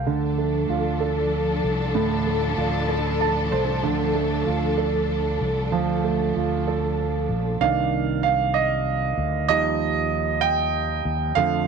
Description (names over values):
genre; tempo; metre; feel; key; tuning
six-eight pop ballad; 64 BPM (dotted quarters); 6/8; straight; unclear; A4 = 441 Hz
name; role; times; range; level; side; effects
warm grand piano; accompaniment; 0.0-11.7 s; A2 to A5; -23 LUFS; right 8 dB; none
fretless electric bass; bass; 0.0-11.7 s; Bb1 to F2; -27 LUFS; left 3 dB; none
rich studio string section; sustained chords; 0.1-7.6 s; F3 to A4; -27 LUFS; left 4 dB; none
room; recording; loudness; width
wet spring reverb, RT60 1.3 s; none; -20 LUFS; side -5 dB against mid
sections
0.0-7.6 A section; 7.6-11.7 B section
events
grand piano fill 2.9-3.8; grand piano solo 7.6-11.7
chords
0.1 Dm; 7.6 Cm7; 9.5 Ebadd9